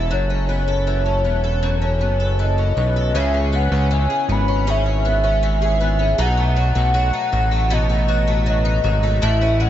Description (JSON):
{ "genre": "dream pop", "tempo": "79 BPM", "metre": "4/4", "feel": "straight", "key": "C# minor", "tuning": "A4 = 439 Hz", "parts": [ { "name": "warbly nostalgic lead", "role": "melody", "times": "0.0-9.7 s", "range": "C#5 to B5", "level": "-22 LUFS", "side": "equal", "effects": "chorus, ping-pong delay" }, { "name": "fingerpicked twelve-string acoustic guitar", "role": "arpeggios", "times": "0.0-9.7 s", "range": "F#2 to A4", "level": "-23 LUFS", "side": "left 2 dB", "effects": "analog chorus, ping-pong delay" }, { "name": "fat analog bass", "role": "bass", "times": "0.0-9.7 s", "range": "E1 to C#2", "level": "-18 LUFS", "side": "equal", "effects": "none" } ], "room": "light reverb", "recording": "nothing above 7.7 kHz", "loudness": "-16 LUFS", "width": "side -11 dB against mid", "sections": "0.0-3.1 A section; 3.1-9.7 B section", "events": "none", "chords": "0.1 F#m7; 3.1 C#m7; 6.2 B7" }